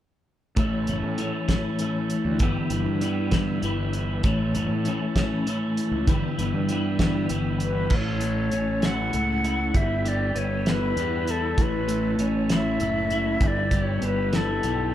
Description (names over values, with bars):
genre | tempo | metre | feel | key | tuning
psychedelic rock | 66 BPM (dotted quarters) | 6/8 | straight | A mixolydian | A4 = 440 Hz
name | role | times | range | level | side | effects
combo organ | sustained chords | 0.6-14.9 s | E4 to E5 | -37 LUFS | right 7 dB | none
twelve-string electric guitar | riff | 0.6-14.9 s | G2 to E4 | -26 LUFS | left 2 dB | rotary speaker
fuzz fingered electric bass | bass | 0.6-14.9 s | F#1 to A2 | -28 LUFS | right 1 dB | overdrive
cloth-damped thuddy drum kit | drums | 0.6-14.8 s | crash cymbal, hi-hat, kick drum, snare drum | -25 LUFS | equal | none
silver concert flute | melody | 7.6-14.9 s | A4 to F#5 | -28 LUFS | left 2 dB | none
room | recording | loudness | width
light reverb | band playing live in one room | -22 LUFS | side -12 dB against mid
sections
0.6-7.9 A section; 7.9-14.9 B section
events
none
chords
0.6 A; 2.4 G6; 4.2 A; 6.1 G6; 7.9 A; 9.7 G6; 11.6 A; 13.4 G6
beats
| 0.57 1.49 | 2.41 3.33 | 4.24 5.16 | 6.08 6.99 | 7.91 8.82 | 9.74 10.66 | 11.57 12.49 | 13.41 14.33